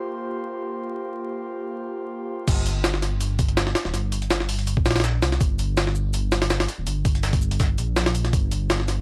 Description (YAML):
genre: drum and bass, jungle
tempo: 164 BPM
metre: 4/4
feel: swing 53% on 16ths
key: G minor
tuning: A4 = 440 Hz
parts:
  - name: airy breathy pad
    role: sustained chords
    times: 0.0-2.5 s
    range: Bb3 to C5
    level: -33 LUFS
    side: equal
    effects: chorus
  - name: dark detuned saw bass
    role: bass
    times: 2.5-9.0 s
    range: D1 to C2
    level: -26 LUFS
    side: equal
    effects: tube saturation
  - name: breakbeat sampler-style drum kit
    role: drums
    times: 2.5-9.0 s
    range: hi-hat, shaker, snare drum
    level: -36 LUFS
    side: equal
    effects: high-pass filter on perc, high-pass filter on snare, high-pass filter on hats
  - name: jungle sampler-style drum kit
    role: drums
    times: 2.5-9.0 s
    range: crash cymbal, hi-hat, kick drum, snare drum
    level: -25 LUFS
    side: equal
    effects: none
room: little or no reverb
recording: dry, gritty hardware recording, vinyl crackle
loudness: -24 LUFS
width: mono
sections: 0.0-2.5 A section; 2.5-9.0 B section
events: drop 2.5-9.0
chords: 0.0 Gm7; 2.5 Gm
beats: 0.28 0.65 | 1.02 1.38 1.75 2.11 | 2.48 2.85 3.21 3.58 | 3.94 4.31 4.67 5.04 | 5.41 5.77 6.14 6.50 | 6.87 7.24 7.60 7.97 | 8.33 8.70